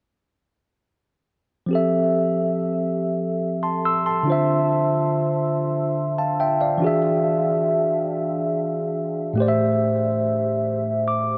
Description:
R&B; 47 BPM (dotted quarters); 6/8; straight; F major; A4 = 441 Hz
tine electric piano; accompaniment; 1.7-11.4 s; A2 to E6; -22 LUFS; equal
wet huge ambient reverb, RT60 8.8 s; dreamy mix soaked in reverb; -22 LUFS; mono
1.7-11.4 A section
1.7 Fmaj7; 4.3 Dm7; 6.8 E7; 9.4 Am7

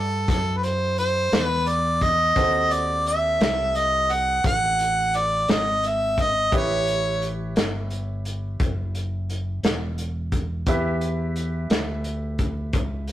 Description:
slow blues; 58 BPM (dotted quarters); 12/8; straight; A4 = 441 Hz
clear harmonica; melody; 0.0-7.3 s; A4 to F#5; -21 LUFS; right 1 dB; overdrive
clear baby grand piano; accompaniment; 0.0-13.1 s; B#3 to E5; -32 LUFS; right 2 dB
fingered electric bass; bass; 0.0-13.1 s; E1 to G2; -28 LUFS; equal
crunchy breakbeat drum kit; drums; 0.3-13.1 s; hi-hat, kick drum, snare drum; -25 LUFS; equal
light reverb; rough rehearsal-room recording, warm saturation; -21 LUFS; side -13 dB against mid
0.0-13.1 A section
0.0 D7 (rootless); 2.4 D#dim7; 6.5 A7

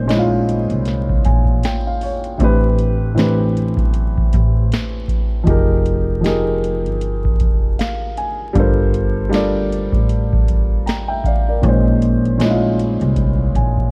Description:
lo-fi hip hop; 78 BPM; 4/4; swing 59% on 16ths; A4 = 441 Hz
dark upright piano; accompaniment; 0.0-13.9 s; A2 to Bb5; -21 LUFS; equal; cassette tape
upright bass; bass; 0.0-13.9 s; F1 to C2; -22 LUFS; equal
booming analog drum machine; drums; 0.1-13.9 s; hi-hat, kick drum, snare drum; -20 LUFS; equal
small room ambience; worn, warbling old tape, cassette tape, vinyl crackle, warbly pitch drift; -17 LUFS; mono
0.0-13.9 A section
drum fill 13.2-13.9
0.0 Bbm11; 2.4 Am11; 5.5 Fm11; 8.6 Gm11; 11.6 Bbm11

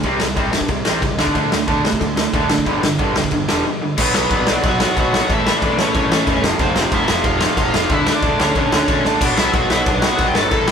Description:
punk rock; 183 BPM; 4/4; straight; A4 = 440 Hz
cranked stack guitar; riff; 0.0-10.7 s; F2 to D4; -18 LUFS; right 1 dB; overdrive
fuzz picked electric bass; bass; 0.0-10.7 s; E1 to D3; -24 LUFS; equal; overdrive
raw garage drum kit; drums; 0.0-10.7 s; crash cymbal, kick drum, snare drum; -19 LUFS; equal
high-gain lead guitar; melody; 4.0-10.7 s; B3 to A5; -21 LUFS; left 1 dB; distortion
light reverb; band playing live in one room; -14 LUFS; side -7 dB against mid
0.0-4.0 A section; 4.0-10.7 B section
break 3.7-4.0; drum fill 9.1
0.0 C5; 1.2 D5; 2.7 G5; 4.0 Bm; 5.3 A; 6.4 F5; 7.9 D5; 9.2 Bm

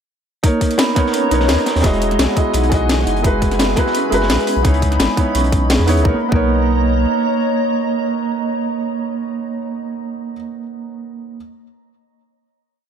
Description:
liquid drum and bass; 171 BPM; 4/4; swing 53% on 16ths; B major; A4 = 441 Hz
felt-muted upright piano; accompaniment; 0.4-11.4 s; E3 to D#5; -20 LUFS; right 2 dB; ping-pong delay
glassy FM pad; sustained chords; 0.8-9.6 s; C#5 to B5; -24 LUFS; left 3 dB; ensemble chorus, built-in reverb, sidechain pumping
vibraphone with medium mallets; arpeggios; 0.4-11.4 s; G#3 to G#4; -22 LUFS; right 4 dB; ping-pong delay
crunchy breakbeat drum kit; drums; 0.4-6.0 s; hi-hat, snare drum; -26 LUFS; left 1 dB; high-pass filter on hats, high-pass filter on snare, high-pass filter on room
drum and bass drum kit; drums; 0.4-6.0 s; hi-hat, snare drum; -20 LUFS; left 1 dB; overdrive
electronic kick drum; drums; 0.4-6.4 s; -17 LUFS; left 1 dB; overdrive
warm sub bass; bass; 1.3-7.1 s; E1 to E2; -18 LUFS; left 1 dB
light reverb, small room reverb; -14 LUFS; side -8 dB against mid
0.4-6.0 drop; 6.0-8.9 final chord
drop 0.4-6.0
0.4 Bmaj9; 1.8 Emaj9; 3.2 F#9sus4; 4.6 C#m9; 6.0 Bmaj9

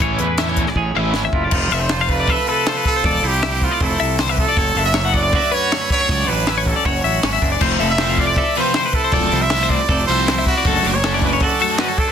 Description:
math rock and midwest emo; 158 BPM; 4/4; straight; A4 = 440 Hz
clean electric guitar; accompaniment; 0.0-12.1 s; F#2 to A4; -25 LUFS; right 7 dB; wide subtle chorus
twelve-string electric guitar; arpeggios; 0.0-12.1 s; A4 to F#5; -22 LUFS; left 9 dB; harmonic tremolo
crunchy overdriven guitar; riff; 0.0-1.2, 7.6-11.9 s; E3 to F#4; -23 LUFS; left 1 dB
fuzz fingered electric bass; bass; 0.0-11.4 s; E1 to E2; -22 LUFS; equal; overdrive
compact cocktail drum kit; drums; 0.0-12.1 s; crash cymbal, hi-hat, kick drum, snare drum; -21 LUFS; equal; soft clipping on snare
bright trumpet; melody; 1.3-12.1 s; F4 to E5; -21 LUFS; right 4 dB; digital delay
light reverb; dense, heavily limited modern master; -15 LUFS; side -8 dB against mid
0.0-1.5 A section; 1.5-12.1 B section
drum fill 0.8-1.5
0.0 Amaj9; 1.5 Fmaj7; 4.6 Dmaj7/F#; 7.6 Fmaj7; 10.6 Dmaj7/F#

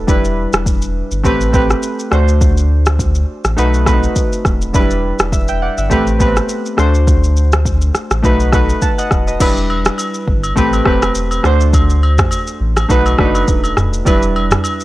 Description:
afrobeats; 103 BPM; 4/4; swing 55% on 16ths; E minor; A4 = 440 Hz
warm analog keys; accompaniment; 0.0-14.8 s; F#3 to A5; -17 LUFS; right 1 dB; chorus
saturated sub bass; bass; 0.0-14.6 s; D#1 to D2; -15 LUFS; equal
afro-pop drum kit; drums; 0.1-14.8 s; crash cymbal, kick drum, rim click, shaker, toms; -15 LUFS; equal
agogo bells; percussion; 9.4-14.8 s; -22 LUFS; equal
little or no reverb; dry, gritty hardware recording; -11 LUFS; side -17 dB against mid
0.0-9.4 A section; 9.4-14.8 B section
0.1 Em7; 1.2 Am9; 2.1 D7; 3.6 B7; 4.7 Em7; 5.9 Am9; 6.8 D7; 8.2 B7; 9.4 Em7; 10.6 Am9; 11.4 D7; 12.9 B7; 14.1 Em7

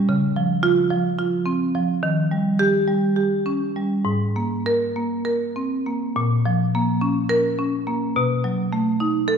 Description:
classical, contemporary piece for solo marimba; 197-219 BPM (eighths); 7/8; rubato; Bb minor; A4 = 443 Hz
marimba with medium hard mallets; solo; 0.0-9.4 s; Ab2 to Bb4; -19 LUFS; right 1 dB
wet recital hall reverb, RT60 1.7 s; heard from further back in the room; -19 LUFS; side -7 dB against mid
0.0-6.2 A section; 6.2-9.4 B section
0.1 Dbmaj7; 2.0 Eb7; 4.1 Abadd9; 6.2 Bbm; 8.2 B7

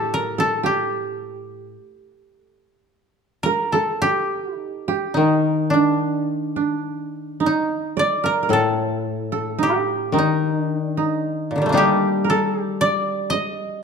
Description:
japanese traditional, Japanese chamber music; 51-59 BPM; 4/4; rubato; G hirajoshi; A4 = 439 Hz
koto; melody; 0.0-13.8 s; Bb2 to Eb5; -22 LUFS; equal
koto; second line; 0.0-13.8 s; D4 to Eb5; -23 LUFS; right 6 dB
koto; accompaniment; 0.0-13.8 s; A2 to G3; -24 LUFS; left 6 dB
moderate recital hall reverb, RT60 1.5 s; dark, warm production; -18 LUFS; side -6 dB against mid
0.0-5.2 A section; 5.2-13.8 B section

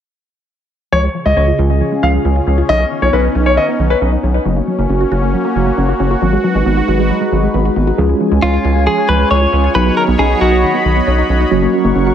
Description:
pop; 136 BPM; 4/4; straight; Db mixolydian; A4 = 440 Hz
clear concert grand piano; second line; 0.9-4.0 s; Cb5 to F5; -16 LUFS; left 2 dB; analog delay
sweeping resonant pad; sustained chords; 0.9-12.1 s; Db3 to Db6; -18 LUFS; left 1 dB; chorus
wide unison pluck; arpeggios; 0.9-12.1 s; Eb3 to Gb4; -20 LUFS; moving between left 3 dB and right 5 dB; auto-pan, analog delay
rubbery square bass; bass; 0.9-12.1 s; Gb1 to Db2; -15 LUFS; equal
mellow tine electric piano; accompaniment; 8.0-12.1 s; Gb3 to Ab4; -17 LUFS; right 1 dB; medium stereo tremolo, analog delay
direct-recorded clean electric guitar; melody; 8.4-10.8 s; F4 to Db5; -16 LUFS; equal; analog delay
moderate spring reverb, RT60 1.2 s; echo-heavy mix; -11 LUFS; side -9 dB against mid
0.9-8.0 A section; 8.0-12.1 B section
0.9 Db; 2.7 Cbadd9; 4.5 Gb; 6.2 Abm7; 8.0 Db; 9.7 Cbadd9; 11.5 Gb

